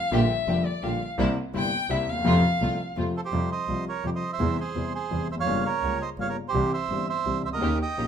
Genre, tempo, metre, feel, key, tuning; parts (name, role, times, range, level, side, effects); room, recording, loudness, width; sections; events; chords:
tango; 168 BPM; 3/4; rubato; F major, F minor from 3.3 s; A4 = 440 Hz
warm violin; second line; 0.0-3.0 s; D5 to G5; -28 LUFS; left 4 dB
warm grand piano; accompaniment; 0.1-8.1 s; F1 to G4; -27 LUFS; left 2 dB
rich studio string section; stabs; 0.1-3.1, 7.6-8.1 s; A3 to G4; -33 LUFS; right 3 dB
clear double bass; bass; 0.1-8.1 s; F1 to F2; -30 LUFS; right 2 dB
bandoneon; melody; 3.2-8.1 s; G4 to G5; -28 LUFS; right 7 dB
moderate large studio reverb, RT60 1.0 s; minimal, uncompressed stereo recording; -24 LUFS; side -8 dB against mid
0.0-3.3 A section; 3.3-8.1 B section
violin solo 0.0-3.3
0.1 Bb6; 1.2 C7; 2.3 F; 3.3 Fsus2; 4.4 C/E; 5.5 Gm7b5; 6.5 C